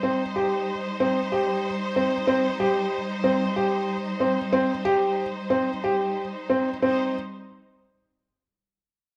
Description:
contemporary instrumental, chamber music in an uneven meter; 186 BPM (eighths); 7/8; straight; C minor; A4 = 441 Hz
rich studio string section; sustained chords; 0.0-7.1 s; G3 to C5; -31 LUFS; equal
felt-muted upright piano; arpeggios; 0.0-7.1 s; C4 to G4; -26 LUFS; equal
light reverb; -25 LUFS; mono
0.0-6.8 A section; 6.8-9.1 B section
0.0 Cm
| 0.04 0.36 0.68 1.00 1.32 1.65 1.97 | 2.29 2.60 2.92 3.24 3.56 3.89 4.21 | 4.53 4.85 5.18 5.50 5.83 6.17 6.50 | 6.83

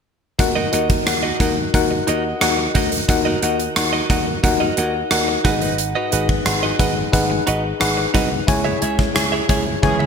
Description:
1980s-style pop; 89 BPM; 4/4; straight; A4 = 440 Hz
FM electric piano with auto-pan; accompaniment; 0.4-10.1 s; G#2 to G#5; -20 LUFS; left 4 dB
direct-recorded clean electric guitar; riff; 0.4-10.1 s; D#4 to E5; -25 LUFS; right 6 dB; wide subtle chorus, ping-pong delay
dry thumbed slap bass; bass; 0.4-10.1 s; G#1 to D#2; -25 LUFS; right 1 dB
gated 80s drum kit; drums; 0.4-10.1 s; hi-hat, kick drum, rim click, toms; -19 LUFS; right 1 dB; gated reverb
analog synth brass; stabs; 9.8-10.0 s; E3 to G#4; -23 LUFS; right 5 dB; chorus
moderate lush hall reverb, RT60 3.0 s; bright 1980s-style digital production; -16 LUFS; side -6 dB against mid
0.4-10.1 A section
band accent 8.5-10.1; drum fill 9.8
0.4 D#m; 5.4 G#m7; 8.5 C#m
| 0.39 1.07 1.74 2.41 | 3.09 3.76 4.44 5.11 | 5.79 6.46 7.13 7.81 | 8.48 9.16 9.83

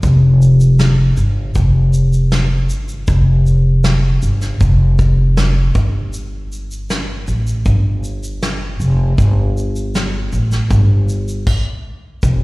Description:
acoustic pop; 79 BPM; 4/4; straight; A4 = 441 Hz
upright bass; bass; 0.0-12.4 s; E1 to A1; -13 LUFS; equal
soft brush drum kit; drums; 0.0-12.4 s; crash cymbal, kick drum, shaker, snare drum; -20 LUFS; equal
little or no reverb; live gig heard through the venue's PA, recital hall reverb; -12 LUFS; side -22 dB against mid
0.0-12.2 A section
stop 11.5-12.2
| 0.03 0.80 1.56 2.32 | 3.08 3.85 4.61 5.37 | 6.13 6.89 7.66 8.42 | 9.18 9.94 10.71 11.47 | 12.23

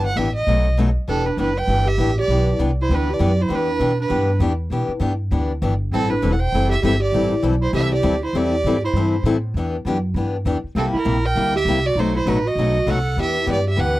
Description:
acoustic string swing (jazz manouche); 198 BPM; 4/4; swing 59% on 8ths; E minor; A4 = 436 Hz
warm violin; melody; 0.0-14.0 s; A4 to G5; -23 LUFS; right 2 dB
picked steel-string acoustic guitar; accompaniment; 0.0-14.0 s; B2 to A4; -22 LUFS; left 3 dB
upright bass; bass; 0.0-14.0 s; E1 to B2; -21 LUFS; equal
bright clarinet; second line; 1.1-14.0 s; C4 to C5; -25 LUFS; right 4 dB
little or no reverb; dry, close 1970s-style studio recording; -17 LUFS; side -16 dB against mid
0.0-1.1 A section; 1.1-14.0 B section
violin solo 0.0-1.1
0.5 B7; 1.1 Em7; 5.9 Am7; 9.5 Em7; 10.8 C7; 12.0 B7b9; 13.2 Em7
0.17 0.47 0.77 | 1.08 1.38 1.68 1.99 | 2.29 2.59 2.90 3.20 | 3.50 3.81 4.11 4.41 | 4.71 5.02 5.32 5.62 | 5.92 6.23 6.53 6.83 | 7.13 7.43 7.74 8.04 | 8.34 8.64 8.95 9.25 | 9.55 9.85 10.15 10.46 | 10.76 11.06 11.36 11.66 | 11.96 12.27 12.57 12.87 | 13.17 13.47 13.78

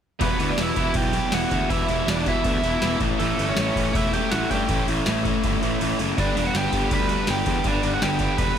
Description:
punk rock; 161 BPM; 4/4; straight; E minor; A4 = 440 Hz
biting lead guitar; melody; 0.2-8.6 s; A3 to B5; -26 LUFS; right 3 dB; overdrive
overdriven electric guitar; riff; 0.2-8.6 s; G2 to E4; -28 LUFS; left 16 dB
overdriven electric guitar; riff; 0.2-8.6 s; E2 to A3; -28 LUFS; right 11 dB
overdriven electric guitar; riff; 0.2-8.6 s; E2 to A3; -30 LUFS; left 1 dB
fuzz picked electric bass; bass; 0.2-8.5 s; E1 to G2; -28 LUFS; equal; overdrive
booming analog drum machine; drums; 0.2-8.5 s; crash cymbal, kick drum, snare drum; -27 LUFS; equal
little or no reverb; -20 LUFS; side -8 dB against mid
0.2-8.6 A section
kick and snare drop out 5.8-6.2
0.2 Em; 3.0 A; 6.2 G
| 0.21 0.59 0.96 1.33 | 1.70 2.08 2.45 2.82 | 3.20 3.57 3.94 4.31 | 4.69 5.06 5.43 5.80 | 6.17 6.54 6.91 7.28 | 7.65 8.02 8.39

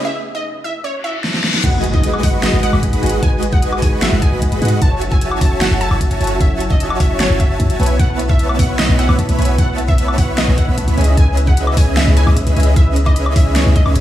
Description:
future bass; 151 BPM; 4/4; half-time; A4 = 440 Hz
wide unison pluck; melody; 0.0-13.9 s; C#5 to A5; -24 LUFS; equal; sidechain pumping, dub echo
airy breathy pad; sustained chords; 0.0-14.0 s; C#3 to B4; -28 LUFS; right 1 dB; chorus, sidechain pumping
dense compressed supersaw; riff; 0.0-14.0 s; G#3 to C#6; -21 LUFS; right 1 dB; sidechain pumping
riser, reverse cymbal and impact; sound effects; 0.0-3.2 s; -23 LUFS; left 1 dB
dubstep drum kit; drums; 1.2-14.0 s; crash cymbal, hi-hat, snare drum, woodblock; -22 LUFS; equal; overdrive, small room ambience
warm 808-style bass; bass; 1.6-14.0 s; F#1 to G#2; -16 LUFS; equal; sidechain pumping
electronic kick drum; drums; 1.6-14.0 s; -15 LUFS; equal; overdrive, small room ambience
soft round pluck; arpeggios; 1.7-14.0 s; B4 to E6; -30 LUFS; left 2 dB; chorus, sidechain pumping, tape echo
little or no reverb; small room ambience; -12 LUFS; side -13 dB against mid
0.0-1.6 A section; 1.6-14.0 B section
build-up 0.0-1.6; break 0.0-1.6; reverse cymbal 1.0-1.6; drum fill 1.2-1.6; drop 1.6-14.0; impact 1.6-3.2
0.0 N.C.; 1.6 G#m7; 4.8 F#m7; 7.8 B7sus4; 11.0 C#m9
| 0.05 0.45 0.84 1.24 | 1.64 2.04 2.43 2.83 | 3.23 3.62 4.02 4.42 | 4.82 5.21 5.61 6.01 | 6.41 6.80 7.20 7.60 | 8.00 8.39 8.79 9.19 | 9.59 9.98 10.38 10.78 | 11.17 11.57 11.97 12.37 | 12.76 13.16 13.56 13.96

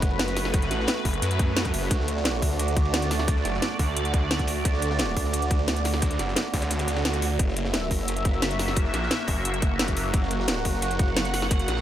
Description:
dark technical drum and bass; 175 BPM; 4/4; straight; F# minor; A4 = 439 Hz
sweeping resonant pad; sustained chords; 0.0-11.8 s; A3 to F#5; -29 LUFS; right 2 dB; chorus, sidechain pumping
snarling distorted saw bass; bass; 0.0-11.8 s; F#1 to F#2; -27 LUFS; equal; distortion, tube saturation
crunchy breakbeat drum kit; drums; 0.0-11.8 s; ride cymbal, snare drum; -38 LUFS; equal; high-pass filter on cymbals, high-pass filter on snare, high-pass filter on room
drum and bass drum kit; drums; 0.0-11.7 s; hi-hat, snare drum; -28 LUFS; equal
electronic kick drum; drums; 0.0-11.6 s; -25 LUFS; equal; overdrive
swell; sound effects; 6.8-7.4 s; -34 LUFS; right 6 dB
light reverb; -22 LUFS; side -11 dB against mid
0.0-11.8 A section
kick drops out 6.7-7.4; swell 6.8-7.4
0.0 F#m; 1.9 D; 7.4 F#7
0.19 | 0.54 0.88 1.22 1.56 | 1.91 2.25 2.59 2.94 | 3.28 3.62 3.96 4.31 | 4.65 4.99 5.34 5.68 | 6.02 6.37 6.71 7.05 | 7.39 7.74 8.08 8.42 | 8.77 9.11 9.45 9.79 | 10.14 10.48 10.82 11.16 | 11.51

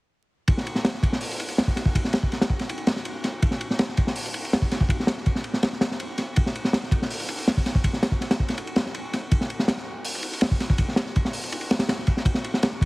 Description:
drum and bass; 163 BPM; 4/4; straight
crunchy breakbeat drum kit; drums; 0.5-12.9 s; hi-hat, kick drum, ride cymbal, snare drum; -22 LUFS; equal
little or no reverb; heavily compressed radio sound, vinyl crackle; -22 LUFS; side -23 dB against mid
0.5-12.9 A section
| 0.48 0.85 1.22 1.58 | 1.95 2.32 2.69 3.06 | 3.42 3.79 4.16 4.53 | 4.90 5.27 5.63 6.00 | 6.37 6.74 7.11 7.47 | 7.84 8.21 8.58 8.95 | 9.31 9.68 10.05 10.42 | 10.79 11.15 11.52 11.89 | 12.26 12.63

